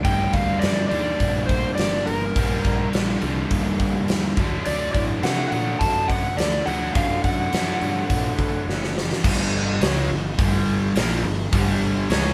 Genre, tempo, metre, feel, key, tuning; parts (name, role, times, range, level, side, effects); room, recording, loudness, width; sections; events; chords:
blues rock power trio and southern rock; 104 BPM; 4/4; straight; G minor from 9.2 s; A4 = 440 Hz
overdriven slide guitar; melody; 0.0-8.9 s; Bb4 to A5; -28 LUFS; equal
crunchy overdriven guitar; riff; 0.0-12.3 s; G2 to D4; -27 LUFS; equal
big rock drum kit; drums; 0.0-12.2 s; crash cymbal, hi-hat, kick drum, snare drum; -26 LUFS; equal
fuzz fingered electric bass; bass; 0.1-12.3 s; F#1 to D3; -30 LUFS; equal; overdrive
moderate studio ambience, RT60 0.4 s; band playing live in one room; -22 LUFS; mono
0.0-9.2 A section; 9.2-12.3 B section
drum fill 8.7-9.2
0.0 Gm; 4.4 D; 9.2 Gm